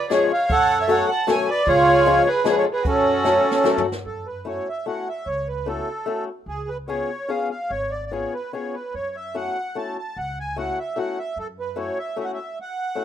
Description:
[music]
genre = musette waltz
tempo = 149 BPM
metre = 3/4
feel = straight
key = F# minor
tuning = A4 = 440 Hz
[part]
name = accordion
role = melody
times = 0.0-13.0 s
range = C#4 to A5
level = -22 LUFS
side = right 2 dB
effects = light tremolo tuning
[part]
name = rich violin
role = second line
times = 0.0-3.8 s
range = F#4 to F#5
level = -28 LUFS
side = right 2 dB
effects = none
[part]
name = fingerpicked swing-style acoustic guitar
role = accompaniment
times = 0.1-13.0 s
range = E#3 to A4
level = -24 LUFS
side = left 6 dB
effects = none
[part]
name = jazz brush drum kit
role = drums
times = 0.1-4.0 s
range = hi-hat, kick drum, snare drum, toms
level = -29 LUFS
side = equal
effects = none
[part]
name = upright bass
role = bass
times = 0.5-11.9 s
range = G#1 to F#2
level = -33 LUFS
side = equal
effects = none
[sound]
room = small room ambience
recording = rough home demo mix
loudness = -20 LUFS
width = side -10 dB against mid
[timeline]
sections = 0.0-4.1 A section; 4.1-13.0 B section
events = drum fill 3.2-4.1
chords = 0.5 F#m; 1.7 C#; 2.8 F#m; 4.1 F#m7; 6.5 C#7; 8.9 F#m7

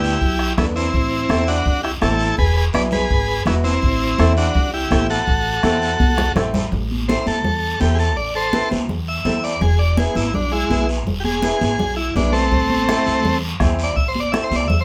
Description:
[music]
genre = latin, cumbia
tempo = 166 BPM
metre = 4/4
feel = straight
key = A dorian, A harmonic minor from 6.7 s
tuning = A4 = 439 Hz
[part]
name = combo organ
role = melody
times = 0.0-14.8 s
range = G#3 to E5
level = -23 LUFS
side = equal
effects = none
[part]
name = bright upright piano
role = accompaniment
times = 0.0-14.6 s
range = B3 to B4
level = -27 LUFS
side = equal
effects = none
[part]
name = upright bass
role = bass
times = 0.0-14.8 s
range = E1 to E2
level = -24 LUFS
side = equal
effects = none
[part]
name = guiro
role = percussion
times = 0.0-14.8 s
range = none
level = -33 LUFS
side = equal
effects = none
[part]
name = bombo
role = percussion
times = 0.2-6.5, 12.5-14.5 s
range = none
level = -25 LUFS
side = equal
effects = none
[part]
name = congas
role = percussion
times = 0.2-14.8 s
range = none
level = -26 LUFS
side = equal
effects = none
[sound]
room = moderate studio reverb, RT60 0.6 s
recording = band playing live in one room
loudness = -19 LUFS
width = mono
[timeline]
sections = 0.0-6.7 A section; 6.7-14.8 B section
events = drum fill 6.0-6.7; transistor combo organ solo 6.7-14.8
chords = 0.0 G; 0.9 Am; 2.4 E; 3.8 Am; 9.6 E; 12.5 Am

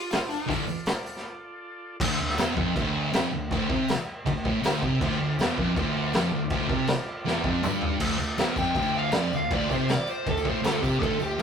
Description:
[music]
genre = garage rock duo or trio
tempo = 160 BPM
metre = 4/4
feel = straight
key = D minor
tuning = A4 = 442 Hz
[part]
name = fuzz lead guitar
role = melody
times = 0.0-0.5, 8.6-11.4 s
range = D4 to G5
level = -28 LUFS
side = equal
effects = distortion
[part]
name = combo organ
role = sustained chords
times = 0.0-2.0, 5.0-11.4 s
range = F4 to D5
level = -38 LUFS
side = right 1 dB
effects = none
[part]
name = tambourine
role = percussion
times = 0.0-11.4 s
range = none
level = -46 LUFS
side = right 4 dB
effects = none
[part]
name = raw garage drum kit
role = drums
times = 0.1-11.4 s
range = crash cymbal, hi-hat, kick drum, snare drum, toms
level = -28 LUFS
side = equal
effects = none
[part]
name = thick fuzz guitar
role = riff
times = 0.5-11.4 s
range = D2 to D3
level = -26 LUFS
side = equal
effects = distortion
[sound]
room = moderate studio reverb, RT60 0.5 s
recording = rough rehearsal-room recording, tube saturation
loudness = -24 LUFS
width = side -7 dB against mid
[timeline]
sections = 0.0-2.0 A section; 2.0-8.0 B section; 8.0-11.4 C section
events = break 1.2-2.0; drum fill 7.3-8.0; lead electric guitar solo 8.0-11.4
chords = 0.0 Dm

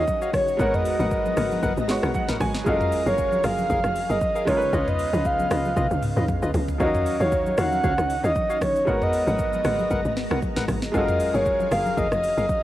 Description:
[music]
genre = amapiano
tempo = 116 BPM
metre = 4/4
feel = swing 55% on 16ths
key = G# dorian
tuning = A4 = 440 Hz
[part]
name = breathy flute-like synth lead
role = melody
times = 0.0-12.6 s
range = C#5 to F#5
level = -24 LUFS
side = equal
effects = chorus, cassette tape, tape echo
[part]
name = bright grand piano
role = accompaniment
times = 0.0-12.6 s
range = E#3 to G#5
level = -31 LUFS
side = right 3 dB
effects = none
[part]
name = ensemble organ-string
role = sustained chords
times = 0.0-12.6 s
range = C#3 to A#5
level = -34 LUFS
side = equal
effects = ensemble chorus, sidechain pumping
[part]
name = percussive organ stab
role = stabs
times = 0.0-12.5 s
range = E#4 to F#5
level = -31 LUFS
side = left 3 dB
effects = chorus, tape echo
[part]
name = tight log drum bass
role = bass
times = 0.0-12.5 s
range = E#1 to D#2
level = -27 LUFS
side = equal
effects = none
[part]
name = afro-pop drum kit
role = drums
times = 0.1-12.6 s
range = hi-hat, kick drum, rim click, shaker, snare drum, toms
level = -28 LUFS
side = equal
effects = overdrive, cassette tape
[part]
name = congas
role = percussion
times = 0.1-12.6 s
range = none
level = -33 LUFS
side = left 2 dB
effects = none
[sound]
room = light reverb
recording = home recording on cassette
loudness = -20 LUFS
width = side -14 dB against mid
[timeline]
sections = 0.0-12.6 A section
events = grand piano fill 1.9-2.7; drum fill 5.8-6.8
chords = 0.0 D#m9; 0.6 G#m9; 2.7 F#maj9; 4.5 C#9; 6.8 D#m9; 8.9 G#m9; 10.9 F#maj9

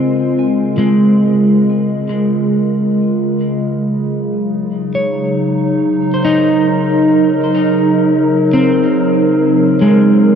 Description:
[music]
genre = ambient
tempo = 70 BPM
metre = 4/4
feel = straight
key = unclear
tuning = A4 = 440 Hz
[part]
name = warbly tape-like pad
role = sustained chords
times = 0.0-10.4 s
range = Db3 to Bb4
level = -14 LUFS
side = equal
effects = chorus, built-in reverb
[part]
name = electric guitar at the edge of break-up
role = arpeggios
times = 0.0-10.4 s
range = Ab3 to Ab5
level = -14 LUFS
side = equal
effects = ping-pong delay
[sound]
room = wet huge ambient reverb, RT60 7.8 s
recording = dark, warm production, faint mains hum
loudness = -11 LUFS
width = side -7 dB against mid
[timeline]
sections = 0.0-10.4 A section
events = none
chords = 0.0 Bbm7; 3.6 Ebm7

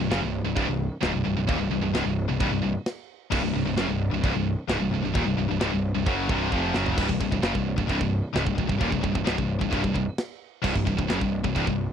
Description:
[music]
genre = heavy metal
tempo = 131 BPM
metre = 4/4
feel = straight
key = unclear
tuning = A4 = 439 Hz
[part]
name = distorted electric guitar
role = riff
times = 0.0-11.9 s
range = C2 to F#3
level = -30 LUFS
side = equal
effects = distortion
[part]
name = heavy high-gain guitar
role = riff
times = 0.0-11.9 s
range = C2 to F#3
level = -30 LUFS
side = right 12 dB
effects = distortion
[part]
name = high-gain distorted guitar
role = riff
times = 0.0-11.9 s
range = C2 to F#3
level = -29 LUFS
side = left 9 dB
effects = distortion
[part]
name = fuzz picked electric bass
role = bass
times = 0.0-11.9 s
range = C1 to F#1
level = -29 LUFS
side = right 1 dB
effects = overdrive
[part]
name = tight metal drum kit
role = drums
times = 0.1-11.8 s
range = china cymbal, crash cymbal, kick drum, snare drum, toms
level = -29 LUFS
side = right 1 dB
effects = none
[sound]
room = little or no reverb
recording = dry, close 1970s-style studio recording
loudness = -23 LUFS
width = side -8 dB against mid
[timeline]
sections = 0.0-7.0 A section; 7.0-11.9 B section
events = drum fill 6.5-7.0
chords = 0.0 Cm; 7.0 C5

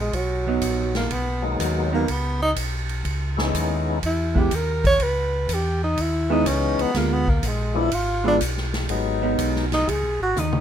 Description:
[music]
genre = soul jazz organ trio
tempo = 123 BPM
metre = 4/4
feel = swing 68% on 8ths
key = G# minor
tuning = A4 = 441 Hz
[part]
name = breathy tenor saxophone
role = melody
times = 0.0-10.6 s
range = D#3 to C#5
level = -24 LUFS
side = right 1 dB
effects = none
[part]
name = mellow tonewheel organ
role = bass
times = 0.0-10.6 s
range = Ab1 to E2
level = -25 LUFS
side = equal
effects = stopped rotary speaker
[part]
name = swinging big-band drum kit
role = drums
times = 0.1-10.6 s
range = hi-hat, kick drum, ride cymbal, snare drum, toms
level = -28 LUFS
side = equal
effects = none
[part]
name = vintage hollow-body jazz guitar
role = accompaniment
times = 0.5-9.8 s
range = D3 to F4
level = -24 LUFS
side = right 6 dB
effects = none
[part]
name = percussive tonewheel organ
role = melody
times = 1.4-9.7 s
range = E3 to E4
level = -25 LUFS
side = left 5 dB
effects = slow rotary speaker
[sound]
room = light reverb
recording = minimal, uncompressed stereo recording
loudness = -20 LUFS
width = side -9 dB against mid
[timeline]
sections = 0.0-10.6 A section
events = tenor saxophone solo 0.0-10.6; drum fill 10.4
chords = 0.0 G#m7; 3.0 C#m7; 7.0 Ddim7; 8.9 G#m7

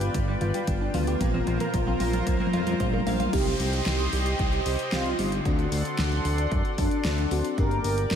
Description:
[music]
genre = synthwave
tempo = 113 BPM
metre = 4/4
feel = straight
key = C minor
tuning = A4 = 440 Hz
[part]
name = chorused pulse-width pad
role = sustained chords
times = 0.0-8.2 s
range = F4 to D6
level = -32 LUFS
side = right 1 dB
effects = sidechain pumping
[part]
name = wide unison pluck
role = arpeggios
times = 0.0-3.3 s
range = Bb3 to F5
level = -33 LUFS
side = right 1 dB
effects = tape echo, slapback echo
[part]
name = clean electric guitar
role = riff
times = 0.0-3.3 s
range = G3 to F4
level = -38 LUFS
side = equal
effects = wide subtle chorus, tape echo
[part]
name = FM electric piano with soft pad layer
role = stabs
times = 0.0-8.2 s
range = G2 to G4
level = -33 LUFS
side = left 3 dB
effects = chorus, tape echo, slapback echo
[part]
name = fat analog bass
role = bass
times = 0.0-8.2 s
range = G1 to F#2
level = -28 LUFS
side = equal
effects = tube saturation
[part]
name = pop drum kit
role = drums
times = 0.0-8.2 s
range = crash cymbal, hi-hat, snare drum, toms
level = -31 LUFS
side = left 1 dB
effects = slapback echo
[part]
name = electronic kick drum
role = drums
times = 0.1-7.7 s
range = none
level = -28 LUFS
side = equal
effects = none
[part]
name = mellow synth brass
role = melody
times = 3.3-8.2 s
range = D4 to Bb4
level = -31 LUFS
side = right 1 dB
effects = chorus, slapback echo
[part]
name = downlifter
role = sound effects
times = 3.3-7.6 s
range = none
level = -36 LUFS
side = equal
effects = none
[sound]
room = wet lush hall reverb, RT60 2.0 s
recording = big arena sound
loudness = -23 LUFS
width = side -8 dB against mid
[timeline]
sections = 0.0-3.3 A section; 3.3-8.2 B section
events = drum fill 0.0-3.3; filter sweep on synth arpeggio sound 0.0-3.3; filter sweep on FM electric piano 0.0-3.3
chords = 0.0 G7; 1.2 Bbsus2; 3.3 Cm; 5.5 D7; 7.6 Gm

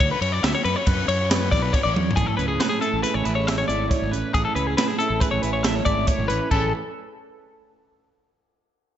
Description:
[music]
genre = math rock and midwest emo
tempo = 138 BPM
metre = 5/4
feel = straight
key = A major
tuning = A4 = 440 Hz
[part]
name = twelve-string electric guitar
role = arpeggios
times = 0.0-6.7 s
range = G#4 to E5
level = -24 LUFS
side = left 4 dB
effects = slapback echo
[part]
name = fuzz fingered electric bass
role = bass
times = 0.0-6.7 s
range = G#1 to F#2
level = -26 LUFS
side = equal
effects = overdrive
[part]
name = crisp fusion drum kit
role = drums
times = 0.0-6.6 s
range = crash cymbal, hi-hat, kick drum, ride cymbal, snare drum, toms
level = -24 LUFS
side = right 1 dB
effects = none
[part]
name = twelve-string electric guitar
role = accompaniment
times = 2.2-6.7 s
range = A2 to G#4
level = -27 LUFS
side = right 8 dB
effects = slapback echo
[sound]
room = moderate lush hall reverb, RT60 2.1 s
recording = big arena sound, nothing above 7.8 kHz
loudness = -20 LUFS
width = side -10 dB against mid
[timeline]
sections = 0.0-2.2 A section; 2.2-6.5 B section; 6.5-8.7 C section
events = drum fill 2.0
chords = 0.0 D69; 2.2 Amaj9; 6.5 A

